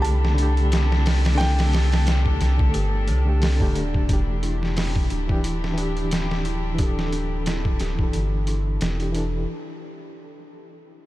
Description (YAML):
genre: trip hop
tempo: 89 BPM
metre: 4/4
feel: swing 56% on 16ths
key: E minor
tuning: A4 = 440 Hz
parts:
  - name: felt-muted upright piano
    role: melody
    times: 0.0-2.7 s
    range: G5 to A5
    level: -32 LUFS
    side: right 1 dB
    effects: tape echo
  - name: reed electric piano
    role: accompaniment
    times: 0.0-9.5 s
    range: D3 to A4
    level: -29 LUFS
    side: equal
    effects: fast tremolo, vintage 12-bit sampler grit, tape echo
  - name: rich chamber violin section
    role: sustained chords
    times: 0.0-9.4 s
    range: D4 to A4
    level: -34 LUFS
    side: left 3 dB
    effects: low-pass filter
  - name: dark detuned synth bell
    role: arpeggios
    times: 0.0-9.5 s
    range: D4 to D5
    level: -35 LUFS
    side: right 1 dB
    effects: chorus, low-pass filter, tape echo
  - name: soft dub sub bass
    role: bass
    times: 0.0-9.5 s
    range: D1 to C2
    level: -22 LUFS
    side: equal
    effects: none
  - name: trip hop sampler-style drum kit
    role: drums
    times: 0.0-9.3 s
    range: hi-hat, kick drum, snare drum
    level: -26 LUFS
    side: equal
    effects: none
room: light reverb, digital ambience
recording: none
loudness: -20 LUFS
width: side -16 dB against mid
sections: 0.0-4.1 A section; 4.1-9.5 B section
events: filter sweep on violin section 4.1-9.5; filter sweep on synth bell 4.1-9.5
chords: 0.0 Dsus4; 4.1 Em7